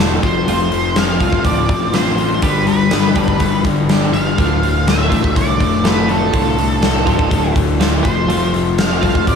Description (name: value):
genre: quiet-loud alternative rock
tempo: 123 BPM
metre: 4/4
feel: straight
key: D dorian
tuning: A4 = 442 Hz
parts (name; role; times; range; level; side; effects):
- twelve-string electric guitar; arpeggios; 0.0-9.3 s; A2 to G4; -24 LUFS; right 7 dB; slapback echo
- overdriven electric guitar; riff; 0.0-9.4 s; D2 to G3; -18 LUFS; left 7 dB; slapback echo
- fuzz fingered electric bass; bass; 0.0-9.4 s; D1 to C2; -20 LUFS; equal; overdrive
- octave-fuzz lead guitar; melody; 0.2-9.4 s; A4 to F5; -21 LUFS; right 3 dB; distortion
- huge arena drum kit; drums; 0.2-9.4 s; hi-hat, kick drum, snare drum; -17 LUFS; equal; none
room: moderate scoring stage reverb, RT60 1.9 s, small room ambience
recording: big arena sound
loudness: -13 LUFS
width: side -6 dB against mid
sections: 0.0-9.4 A section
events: none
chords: 0.2 F; 2.4 G; 4.4 Dm